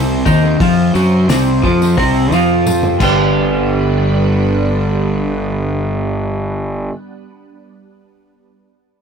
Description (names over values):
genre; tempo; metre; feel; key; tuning
psychedelic rock; 88 BPM; 4/4; straight; G mixolydian; A4 = 440 Hz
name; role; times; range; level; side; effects
soft string machine; sustained chords; 0.0-6.8 s; C3 to C5; -24 LUFS; right 2 dB; phaser, ensemble chorus
clean electric guitar; riff; 0.0-7.0 s; G2 to G4; -14 LUFS; equal; flanger, double-tracked left and right
fuzz fingered electric bass; bass; 0.0-6.9 s; G1 to F#2; -18 LUFS; equal; overdrive
tambourine; percussion; 0.1-3.6 s; none; -32 LUFS; left 10 dB; none
cloth-damped thuddy drum kit; drums; 0.3-3.2 s; crash cymbal, hi-hat, kick drum, snare drum, toms; -20 LUFS; equal; dub echo
room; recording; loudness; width
light reverb, studio ambience; echo-heavy mix; -12 LUFS; side -6 dB against mid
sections
0.0-3.3 A section; 3.3-6.1 B section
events
drum fill 2.7-3.3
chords
0.0 C5; 3.0 G